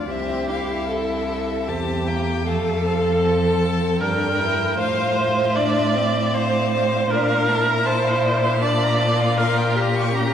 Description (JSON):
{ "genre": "classical, slow romantic movement for string quartet", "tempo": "78 BPM", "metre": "3/4", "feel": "rubato", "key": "F major", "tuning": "A4 = 442 Hz", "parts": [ { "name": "rich violin", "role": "melody", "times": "0.0-10.3 s", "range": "D5 to Db6", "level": "-28 LUFS", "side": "left 6 dB", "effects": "none" }, { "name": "rich violin", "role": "second line", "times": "0.0-10.3 s", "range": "A3 to F4", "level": "-27 LUFS", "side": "left 2 dB", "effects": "none" }, { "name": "rich viola", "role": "accompaniment", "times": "0.0-10.3 s", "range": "G4 to D5", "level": "-21 LUFS", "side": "right 1 dB", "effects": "none" }, { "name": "rich cello", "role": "bass", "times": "0.0-10.3 s", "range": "C2 to Bb2", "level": "-23 LUFS", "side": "right 1 dB", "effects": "none" } ], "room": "wet cathedral reverb, RT60 4.6 s", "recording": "recorded in a church or concert hall", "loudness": "-18 LUFS", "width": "side -9 dB against mid", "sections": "0.0-10.3 A section", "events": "none", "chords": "0.1 C; 2.5 F; 4.8 F/A; 7.1 Bbmaj7; 9.4 Gm7b5/Bb" }